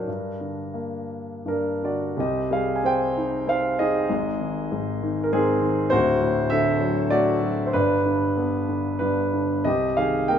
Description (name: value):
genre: classical, lyrical solo piano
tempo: 80-102 BPM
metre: 3/4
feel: rubato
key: C minor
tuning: A4 = 440 Hz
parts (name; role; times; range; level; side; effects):
- warm concert grand piano; solo; 0.0-10.4 s; D1 to Ab5; -21 LUFS; equal; none
room: moderate recital hall reverb, RT60 1.6 s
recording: nothing above 7.7 kHz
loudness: -21 LUFS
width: side -8 dB against mid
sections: 0.0-2.2 A section; 2.2-10.4 B section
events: none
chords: 0.1 Gm; 2.2 Cm; 4.1 Ab; 5.9 D7; 7.7 G; 9.6 Cm7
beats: | 0.07 0.74 1.46 | 2.17 2.84 3.48 | 4.10 4.72 5.33 | 5.92 6.51 7.12 | 7.74 8.36 9.00 | 9.65 10.29